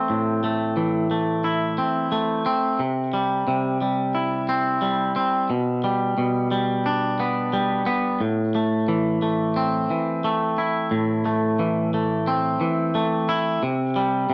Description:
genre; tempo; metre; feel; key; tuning
rock; 89 BPM; 4/4; straight; A minor; A4 = 440 Hz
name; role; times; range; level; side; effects
twangy electric guitar; solo; 0.0-14.3 s; A2 to E4; -23 LUFS; equal; slapback echo
room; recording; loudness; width
light reverb; none; -23 LUFS; mono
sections
0.0-8.2 A section; 8.2-14.3 B section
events
build-up 8.2-14.3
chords
0.0 Am; 2.8 C; 5.5 G/B; 8.2 Am; 13.6 C5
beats
| 0.10 0.77 1.44 2.12 | 2.79 3.47 4.14 4.82 | 5.49 6.17 6.85 7.52 | 8.20 8.88 9.55 10.23 | 10.91 11.59 12.27 12.94 | 13.62 14.30

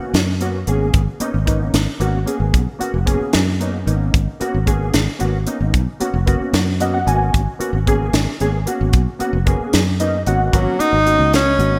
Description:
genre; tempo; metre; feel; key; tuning
electric jazz fusion; 75 BPM (dotted quarters); 6/8; straight; G# minor; A4 = 440 Hz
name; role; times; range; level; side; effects
barky reed electric piano; accompaniment; 0.0-11.8 s; A#3 to G#5; -24 LUFS; equal; overdrive, ensemble chorus
fingered electric bass; bass; 0.0-11.8 s; F#1 to F#2; -21 LUFS; equal; none
crisp fusion drum kit; drums; 0.1-11.7 s; hi-hat, kick drum, snare drum; -22 LUFS; equal; gated reverb
clear tenor saxophone; melody; 10.5-11.8 s; F#3 to D#4; -17 LUFS; equal; none
room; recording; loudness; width
light reverb, small room ambience; bright 1980s-style digital production; -18 LUFS; mono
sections
0.0-10.5 A section; 10.5-11.8 B section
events
reed electric piano fill 6.5-7.3, 9.7-10.5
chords
0.0 G#m11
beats
0.14 | 0.94 1.74 | 2.54 3.34 | 4.14 4.94 | 5.74 6.54 | 7.34 8.14 | 8.94 9.74 | 10.54 11.34

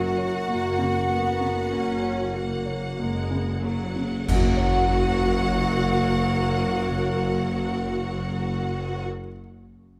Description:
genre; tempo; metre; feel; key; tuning
cinematic, emotional film score for orchestra; 48 BPM; 4/4; rubato; F# major; A4 = 436 Hz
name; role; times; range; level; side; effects
rich studio violin section; melody; 0.0-9.0 s; F#5; -40 LUFS; equal; none
hollow concert flute; second line; 0.0-9.1 s; F#5; -35 LUFS; equal; none
rich studio violin section; second line; 0.0-9.0 s; F#5; -38 LUFS; equal; none
warm clarinet; second line; 0.0-9.0 s; F#4; -38 LUFS; equal; none
rich studio viola section; accompaniment; 0.0-9.1 s; F#3 to A#4; -37 LUFS; equal; none
warm grand piano; accompaniment; 0.0-10.0 s; F#2 to F#5; -33 LUFS; equal; none
warm French horn section; sustained chords; 0.0-9.1 s; F#3 to A#4; -35 LUFS; equal; none
concert harp; arpeggios; 0.0-9.4 s; none; barely audible; none; none
clear studio cello section; bass; 0.0-9.0 s; F#4; -32 LUFS; equal; none
rich studio double bass section; bass; 0.0-9.0 s; F#1; -30 LUFS; equal; none
clash cymbals and concert bass drum; percussion; 4.3-6.7 s; none; -32 LUFS; equal; none
room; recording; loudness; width
light reverb; none; -25 LUFS; mono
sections
0.0-4.3 A section; 4.3-9.3 B section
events
slowing down 0.0-4.3; band accent 4.3-5.5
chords
0.0 F#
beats
0.49 1.73 2.99 | 4.28 5.53 6.78 8.03

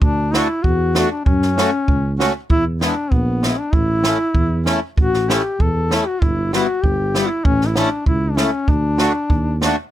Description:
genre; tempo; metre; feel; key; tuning
alpine folk, alpine dance band; 97 BPM; 2/4; straight; D major; A4 = 440 Hz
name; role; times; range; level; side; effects
warm duduk; melody; 0.0-9.6 s; B3 to A4; -20 LUFS; left 2 dB; none
dark tuba; bass; 0.0-9.7 s; G1 to F#2; -21 LUFS; right 1 dB; none
compact cocktail drum kit; drums; 0.0-9.8 s; kick drum, snare drum; -18 LUFS; right 1 dB; none
accordion; accompaniment; 0.3-9.8 s; G3 to F#4; -20 LUFS; equal; none
room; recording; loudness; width
little or no reverb; close, detailed microphones; -15 LUFS; side -12 dB against mid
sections
0.0-9.9 A section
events
none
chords
0.0 D; 1.3 F#m; 2.5 E; 3.7 A; 6.2 Em/G; 7.4 A; 8.7 D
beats
| 0.01 0.64 | 1.26 1.88 | 2.49 3.11 | 3.72 4.34 | 4.97 5.59 | 6.21 6.83 | 7.44 8.06 | 8.67 9.29

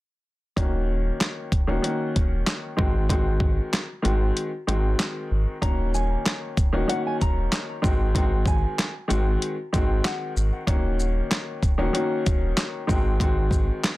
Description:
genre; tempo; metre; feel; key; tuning
hip hop, boom-bap hip-hop; 95 BPM; 4/4; swing 56% on 16ths; Eb dorian; A4 = 440 Hz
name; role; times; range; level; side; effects
warm upright piano; accompaniment; 0.6-13.9 s; Eb3 to Gb4; -27 LUFS; left 1 dB; high-pass filter, low-pass filter
warm sub bass; bass; 0.6-13.7 s; Eb1 to Ab1; -24 LUFS; equal; none
dusty soul sampler-style drum kit; drums; 0.6-14.0 s; handclaps, hi-hat, kick drum, shaker, snare drum; -24 LUFS; equal; none
nylon-string guitar; melody; 5.6-10.3 s; Gb5 to Bb5; -33 LUFS; right 1 dB; high-pass filter, low-pass filter, tape echo
room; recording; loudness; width
little or no reverb; dense, heavily limited modern master; -22 LUFS; side -18 dB against mid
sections
0.6-5.6 A section; 5.6-14.0 B section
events
break 4.4-5.6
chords
0.6 Ebm7; 2.8 Ab7; 5.6 Ebm7; 7.8 Ab7; 10.7 Ebm7; 12.9 Ab7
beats
| 0.57 1.20 1.83 2.46 | 3.09 3.73 4.36 4.99 | 5.62 6.25 6.88 7.51 | 8.15 8.78 9.41 10.04 | 10.67 11.30 11.94 12.57 | 13.20 13.83

